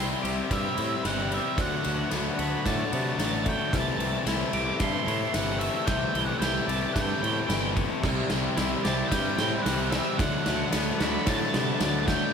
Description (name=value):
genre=post-rock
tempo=112 BPM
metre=4/4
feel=straight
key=unclear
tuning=A4 = 439 Hz
part: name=octave-fuzz lead guitar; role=melody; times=0.0-12.3 s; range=E5 to D6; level=-32 LUFS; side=right 4 dB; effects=distortion, digital delay
part: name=soft additive organ-like pad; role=sustained chords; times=0.0-12.3 s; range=F#4 to C6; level=-41 LUFS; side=right 4 dB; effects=none
part: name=twangy electric guitar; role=arpeggios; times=0.0-12.3 s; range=C3 to G4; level=-36 LUFS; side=equal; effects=digital delay
part: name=distorted electric guitar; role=riff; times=0.0-12.3 s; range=C3 to G4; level=-30 LUFS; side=left 7 dB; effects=distortion
part: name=fuzz picked electric bass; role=bass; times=0.0-12.1 s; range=G1 to C3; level=-32 LUFS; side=right 1 dB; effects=overdrive
part: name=big rock drum kit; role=drums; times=0.2-12.2 s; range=crash cymbal, kick drum, ride cymbal, snare drum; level=-29 LUFS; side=right 1 dB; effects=none
room=light reverb, studio reverb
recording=none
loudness=-24 LUFS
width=side -6 dB against mid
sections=0.0-12.3 A section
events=build-up 0.0-12.3; drum fill 0.0-12.3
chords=0.0 C; 1.6 D6; 3.7 Am7; 8.0 C; 10.2 D6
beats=0.51 1.04 | 1.58 2.12 2.66 3.19 | 3.73 4.27 4.81 5.34 | 5.88 6.42 6.96 7.50 | 8.04 8.57 9.11 9.65 | 10.19 10.73 11.27 11.81